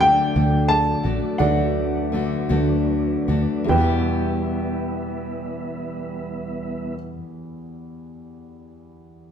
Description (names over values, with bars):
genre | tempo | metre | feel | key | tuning
folk | 48-59 BPM (dotted quarters) | 6/8 | straight | E minor | A4 = 440 Hz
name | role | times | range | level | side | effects
dark upright piano | melody | 0.0-7.0 s | F#5 to A5 | -22 LUFS | left 1 dB | none
dark concert grand piano | accompaniment | 0.0-9.3 s | D2 to E5 | -29 LUFS | right 3 dB | none
picked steel-string acoustic guitar | accompaniment | 0.0-7.3 s | E2 to G4 | -25 LUFS | left 3 dB | none
mellow tonewheel organ | sustained chords | 0.0-6.9 s | F#3 to E5 | -31 LUFS | right 1 dB | slow rotary speaker
fingered electric bass | bass | 0.0-6.9 s | A1 to E2 | -24 LUFS | right 1 dB | none
room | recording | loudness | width
wet large studio reverb, RT60 1.2 s | band playing live in one room | -20 LUFS | side -8 dB against mid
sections
0.0-3.7 A section; 3.7-8.7 B section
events
slowing down 0.0-3.7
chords
0.0 D; 3.7 Em